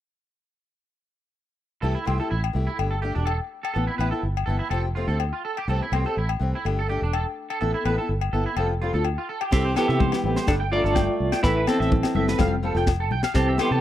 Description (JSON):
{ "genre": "highlife guitar band", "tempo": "125 BPM", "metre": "4/4", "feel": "swing 53% on 16ths", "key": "C major", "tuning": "A4 = 440 Hz", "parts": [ { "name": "picked acoustic archtop guitar", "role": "accompaniment", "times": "1.8-13.8 s", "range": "E3 to A4", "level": "-30 LUFS", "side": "left 4 dB", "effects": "none" }, { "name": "electric guitar at the edge of break-up", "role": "arpeggios", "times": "1.8-13.8 s", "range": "C4 to A5", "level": "-30 LUFS", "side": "right 6 dB", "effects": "ensemble chorus, slapback echo" }, { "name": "fingered electric bass", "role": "bass", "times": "1.8-13.8 s", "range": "E1 to C3", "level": "-25 LUFS", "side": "right 1 dB", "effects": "none" }, { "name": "agogo bells", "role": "percussion", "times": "2.1-13.7 s", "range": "none", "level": "-32 LUFS", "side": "left 13 dB", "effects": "none" }, { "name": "clean electric guitar", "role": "melody", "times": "9.5-13.8 s", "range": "B3 to D5", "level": "-24 LUFS", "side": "left 1 dB", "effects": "tremolo" }, { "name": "breathy alto saxophone", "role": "second line", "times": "9.5-13.8 s", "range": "D3 to A3", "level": "-32 LUFS", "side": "right 14 dB", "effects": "none" }, { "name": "tight funk drum kit", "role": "drums", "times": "9.5-13.7 s", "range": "crash cymbal, kick drum, snare drum", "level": "-25 LUFS", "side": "equal", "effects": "none" }, { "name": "congas", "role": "percussion", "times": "9.5-13.4 s", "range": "none", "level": "-30 LUFS", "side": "left 6 dB", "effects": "none" } ], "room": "small room ambience", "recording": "dry, close 1970s-style studio recording", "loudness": "-21 LUFS", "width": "side -12 dB against mid", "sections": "1.8-9.5 A section; 9.5-13.8 B section", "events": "none", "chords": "1.8 C6; 2.8 Gsus2; 3.8 Asus2; 4.7 Fadd9; 5.7 C6; 6.6 Gsus2; 7.6 Asus2; 8.6 Fadd9; 9.5 C6; 10.5 Gsus2; 11.4 Asus2; 12.4 Fadd9", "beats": "| 1.82 2.31 2.79 3.27 | 3.75 4.24 4.72 5.20 | 5.68 6.16 6.65 7.13 | 7.61 8.09 8.57 9.05 | 9.53 10.01 10.48 10.96 | 11.44 11.92 12.40 12.87 | 13.35" }